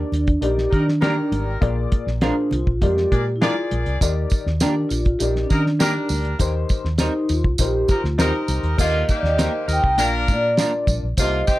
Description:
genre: uptempo 1960s-style soul.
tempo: 100 BPM.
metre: 4/4.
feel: straight.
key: Eb major.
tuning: A4 = 439 Hz.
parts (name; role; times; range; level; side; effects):
vibraphone with soft mallets; melody; 0.0-11.6 s; Db4 to G5; -22 LUFS; right 1 dB; none.
dark upright piano; accompaniment; 0.0-11.6 s; Bb2 to Eb5; -28 LUFS; left 5 dB; none.
vintage muted fingered electric bass; bass; 0.0-11.4 s; Ab1 to Eb3; -23 LUFS; equal; none.
cloth-damped thuddy drum kit; drums; 0.1-11.6 s; crash cymbal, hi-hat, kick drum, snare drum; -21 LUFS; equal; none.
congas; percussion; 0.1-11.6 s; none; -35 LUFS; right 1 dB; none.
warm horn section; second line; 0.7-11.6 s; D3 to D5; -25 LUFS; equal; none.
semi-hollow electric guitar; stabs; 1.0-10.7 s; G3 to Bb4; -28 LUFS; right 3 dB; wide subtle chorus, tape echo.
tambourine; percussion; 4.0-11.6 s; none; -30 LUFS; right 5 dB; none.
room: light reverb.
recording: none.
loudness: -18 LUFS.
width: side -16 dB against mid.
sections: 0.0-8.8 A section; 8.8-11.6 B section.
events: none.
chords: 0.0 Ebmaj7; 1.6 Bb7; 4.0 Ebmaj7; 6.4 Eb6; 8.8 Eb; 10.0 Bb.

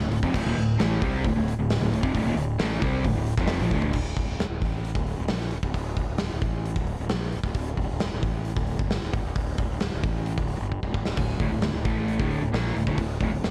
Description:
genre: hard rock.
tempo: 133 BPM.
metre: 4/4.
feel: straight.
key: D minor.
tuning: A4 = 440 Hz.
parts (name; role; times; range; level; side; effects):
crunchy overdriven guitar; riff; 0.0-3.9, 11.2-13.5 s; D2 to C4; -31 LUFS; equal; none.
crunchy overdriven guitar; riff; 0.0-3.9, 11.2-13.5 s; D2 to C4; -31 LUFS; equal; none.
fuzz fingered electric bass; bass; 0.0-13.5 s; D1 to C2; -32 LUFS; equal; overdrive.
gated 80s drum kit; drums; 0.0-13.5 s; crash cymbal, hi-hat, kick drum, snare drum, splash cymbal, toms; -30 LUFS; equal; none.
room: light reverb.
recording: cassette tape.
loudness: -26 LUFS.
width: mono.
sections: 0.0-3.9 A section; 3.9-13.5 B section.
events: drum fill 3.7, 10.7-11.2.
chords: 0.0 Dm; 3.9 D5.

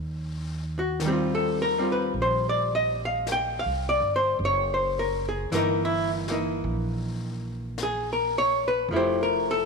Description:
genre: jazz ballad.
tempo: 53 BPM.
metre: 4/4.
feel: swing 67% on 8ths.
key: unclear.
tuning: A4 = 442 Hz.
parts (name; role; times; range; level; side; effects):
upright bass; bass; 0.0-9.7 s; F1 to Eb2; -32 LUFS; right 1 dB; tube saturation.
archtop guitar, miked and amplified; accompaniment; 0.8-9.7 s; Eb3 to G5; -24 LUFS; left 1 dB; none.
jazz brush drum kit; drums; 1.0-9.7 s; brushed snare drum, hi-hat, snare drum; -41 LUFS; left 6 dB; none.
room: moderate echo chamber reverb, RT60 2.6 s.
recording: 1960s-style stereo.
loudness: -24 LUFS.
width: side -4 dB against mid.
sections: 0.0-9.7 A section.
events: none.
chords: 0.0 Eb69; 4.4 Gb6; 8.9 Fmaj9.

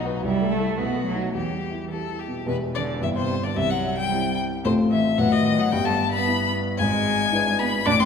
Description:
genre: quick classical-period movement for piano trio.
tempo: 110 BPM.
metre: 2/4.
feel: straight.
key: E minor.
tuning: A4 = 440 Hz.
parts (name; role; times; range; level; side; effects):
rich violin; melody; 0.0-8.1 s; D#4 to D6; -25 LUFS; left 7 dB; none.
dark grand piano; accompaniment; 0.0-8.1 s; E1 to B4; -24 LUFS; left 1 dB; none.
rich cello; second line; 0.2-8.1 s; B2 to D4; -28 LUFS; right 5 dB; none.
room: wet scoring stage reverb, RT60 1.7 s.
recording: none.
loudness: -21 LUFS.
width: side -6 dB against mid.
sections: 0.0-2.5 A section; 2.5-8.1 B section.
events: none.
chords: 0.2 Am/C; 0.8 B7; 1.3 Em; 3.0 Em/G; 3.6 C; 4.6 F/A; 5.2 B7/A; 5.7 Em/G; 6.8 E7/G#.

